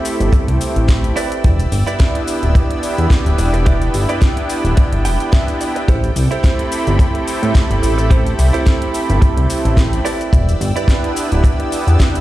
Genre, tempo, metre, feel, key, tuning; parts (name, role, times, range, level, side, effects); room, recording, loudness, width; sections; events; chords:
nu-disco, nu disco; 108 BPM; 4/4; swing 55% on 16ths; A minor; A4 = 441 Hz
warm analog pad; accompaniment; 0.0-12.2 s; A3 to B5; -21 LUFS; right 1 dB; chorus, sidechain pumping, tape echo
lush unison pad; sustained chords; 0.0-12.2 s; A4 to E6; -27 LUFS; equal; chorus, phaser, sidechain pumping
house drum kit; drums; 0.1-12.2 s; hi-hat, shaker, snare drum; -27 LUFS; equal
chorused synth bass; bass; 0.2-12.2 s; D1 to A2; -14 LUFS; equal
direct-recorded clean electric guitar; riff; 0.3-11.6 s; E4 to G5; -25 LUFS; right 4 dB; wide subtle chorus, tape echo
kick drum; drums; 0.3-12.1 s; -12 LUFS; equal
small room reverb; played on a big sound system in a bare room, stone room reverb; -13 LUFS; side -15 dB against mid
0.0-12.2 A section
clean electric guitar fill 4.8-5.9
0.0 Am7; 1.2 Em7; 5.9 Am7; 10.1 Em7